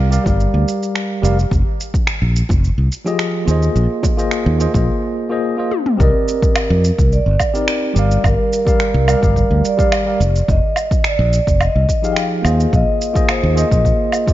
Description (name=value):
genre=sunset chillout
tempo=107 BPM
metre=4/4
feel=straight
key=F dorian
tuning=A4 = 443 Hz
part: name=tine electric piano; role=accompaniment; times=0.0-14.3 s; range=F3 to F5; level=-20 LUFS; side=equal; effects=auto-pan, tape echo
part: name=modern bright fingered electric bass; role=bass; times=0.0-13.9 s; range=F1 to F2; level=-15 LUFS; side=equal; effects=tube saturation
part: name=deep house drum kit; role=drums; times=0.1-14.3 s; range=finger snaps, shaker, toms, woodblock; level=-23 LUFS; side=right 1 dB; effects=overdrive
part: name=electronic kick drum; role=drums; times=0.3-14.3 s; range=none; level=-18 LUFS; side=equal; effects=overdrive
part: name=bongos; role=percussion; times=0.3-4.9 s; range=none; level=-29 LUFS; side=right 1 dB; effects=none
part: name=vibraphone with soft mallets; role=melody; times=6.0-14.3 s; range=Bb4 to G5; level=-19 LUFS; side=right 1 dB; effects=digital delay
room=light reverb, digital ambience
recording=dark, warm production, nothing above 7.5 kHz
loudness=-13 LUFS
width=side -14 dB against mid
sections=0.0-6.0 A section; 6.0-14.3 B section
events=break 4.9-6.0; drum fill 5.7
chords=0.0 Gm7; 1.5 Fm9; 3.8 Bb9sus4; 6.0 Cm9; 8.0 Gm7; 10.5 Fm9; 12.7 Bb9sus4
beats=0.39 0.95 | 1.51 2.08 2.64 3.20 | 3.76 4.32 4.88 5.44 | 6.00 6.56 7.12 7.68 | 8.24 8.80 9.37 9.93 | 10.49 11.05 11.61 12.17 | 12.73 13.29 13.85